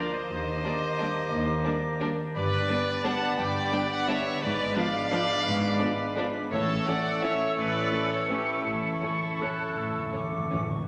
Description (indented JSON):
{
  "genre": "classical, orchestral ballroom waltz",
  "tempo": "151-190 BPM",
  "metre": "3/4",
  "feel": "rubato",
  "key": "unclear",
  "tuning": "A4 = 442 Hz",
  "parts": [
    { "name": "rich studio violin section", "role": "melody", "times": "0.0-10.6 s", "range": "C#4 to D4", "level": "-40 LUFS", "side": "equal", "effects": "none" },
    { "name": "mellow clarinet", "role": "second line", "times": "0.0-10.7 s", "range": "F4 to B4", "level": "-43 LUFS", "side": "equal", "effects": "none" },
    { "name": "silver concert flute", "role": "second line", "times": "0.0-10.9 s", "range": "C#6 to F#6", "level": "-39 LUFS", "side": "equal", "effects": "none" },
    { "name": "warm oboe", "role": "second line", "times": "0.0-10.7 s", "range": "Bb5 to C#6", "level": "-38 LUFS", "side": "equal", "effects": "none" },
    { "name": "warm studio violin section", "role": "second line", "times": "0.0-10.7 s", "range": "A4 to A5", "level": "-36 LUFS", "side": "equal", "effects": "none" },
    { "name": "mellow bassoon", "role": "accompaniment", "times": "0.0-10.7 s", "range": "G3 to Bb3", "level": "-40 LUFS", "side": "equal", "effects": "none" },
    { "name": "warm studio viola section", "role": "accompaniment", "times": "0.0-10.6 s", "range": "E3 to B3", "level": "-39 LUFS", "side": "equal", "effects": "none" },
    { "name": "mellow French horn section", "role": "sustained chords", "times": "0.0-10.7 s", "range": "Bb3 to E4", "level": "-41 LUFS", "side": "equal", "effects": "none" },
    { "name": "concert harp", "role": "arpeggios", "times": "0.0-10.9 s", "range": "G2 to B5", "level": "-40 LUFS", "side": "equal", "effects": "none" },
    { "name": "bright trumpet section", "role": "stabs", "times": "0.0-10.7 s", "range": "E4 to F#5", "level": "-35 LUFS", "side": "equal", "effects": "none" },
    { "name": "warm studio cello section", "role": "bass", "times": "0.3-10.1 s", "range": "Eb2 to A2", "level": "-38 LUFS", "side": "equal", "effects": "none" },
    { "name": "warm studio double bass section", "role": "bass", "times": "0.3-10.1 s", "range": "G1 to Eb2", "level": "-41 LUFS", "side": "equal", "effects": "none" },
    { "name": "timpani", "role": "percussion", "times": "6.5-10.8 s", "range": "A2", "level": "-40 LUFS", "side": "equal", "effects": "none" }
  ],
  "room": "wet scoring stage reverb, RT60 1.9 s",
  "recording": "none",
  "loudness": "-28 LUFS",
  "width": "mono",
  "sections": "0.0-10.9 A section",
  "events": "timpani fill 8.6-10.9",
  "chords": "0.3 Ebmaj7; 2.4 G; 4.4 G#dim7; 6.5 A",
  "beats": "| 0.30 0.64 0.99 | 1.31 1.65 2.01 | 2.35 2.69 3.04 | 3.38 3.72 4.08 | 4.42 4.76 5.12 | 5.46 5.81 6.17 | 6.51 6.86 7.23 | 7.57 7.92 8.29 | 8.64 9.02 9.41 | 9.77 10.14 10.52"
}